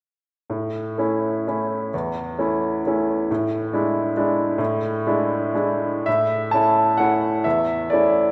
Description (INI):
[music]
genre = classical, piano waltz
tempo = 110-144 BPM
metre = 3/4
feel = rubato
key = A major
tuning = A4 = 440 Hz
[part]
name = bright upright piano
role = solo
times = 0.5-8.3 s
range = E2 to A5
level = -22 LUFS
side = equal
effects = none
[sound]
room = wet concert hall reverb, RT60 2.2 s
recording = recorded in a church or concert hall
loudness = -22 LUFS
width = mono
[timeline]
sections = 0.5-6.1 A section; 6.1-8.3 B section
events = none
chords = 0.5 A; 3.3 E7/A; 6.1 A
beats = | 0.50 0.98 1.47 | 1.93 2.38 2.85 | 3.29 3.72 4.16 | 4.59 5.05 5.55 | 6.06 6.52 6.99 | 7.45 7.90